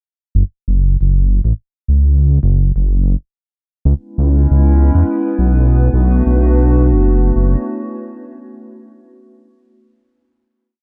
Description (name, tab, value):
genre	IDM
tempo	137 BPM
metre	4/4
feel	straight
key	F# minor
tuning	A4 = 444 Hz
part	dark detuned saw bass	bass	0.3-7.6 s	F#1 to E2	-13 LUFS	equal	tube saturation
part	warbly tape-like pad	sustained chords	4.2-7.6 s	G#3 to B4	-21 LUFS	equal	chorus, built-in reverb, vintage 12-bit sampler grit
room	light reverb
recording	none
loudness	-14 LUFS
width	mono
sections	0.3-7.4 groove; 7.4-9.1 final chord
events	none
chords	0.3 F#5; 3.9 C#m7; 5.6 Bm7; 7.4 F#m7